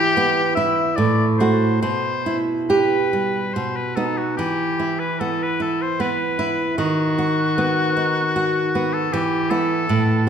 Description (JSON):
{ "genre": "romantic duo for oboe and classical guitar", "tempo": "68-80 BPM", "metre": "3/4", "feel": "rubato", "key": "E minor", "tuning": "A4 = 440 Hz", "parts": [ { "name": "clear oboe", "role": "melody", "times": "0.0-10.3 s", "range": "F#4 to E5", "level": "-22 LUFS", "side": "left 4 dB", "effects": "none" }, { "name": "nylon-string guitar", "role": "accompaniment", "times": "0.0-10.3 s", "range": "A2 to G4", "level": "-19 LUFS", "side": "right 2 dB", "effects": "none" } ], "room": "wet scoring stage reverb, RT60 1.8 s", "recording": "recorded in a church or concert hall", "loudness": "-18 LUFS", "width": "side -8 dB against mid", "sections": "0.0-10.3 A section", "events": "none", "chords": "0.0 Em; 1.0 F#dim/A; 1.8 Em/B; 3.6 B; 4.4 E5; 6.8 B/D#; 9.1 Em", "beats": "0.16 0.97 | 1.83 2.70 3.55 | 4.38 5.20 6.00 | 6.78 7.57 8.35 | 9.12 9.88" }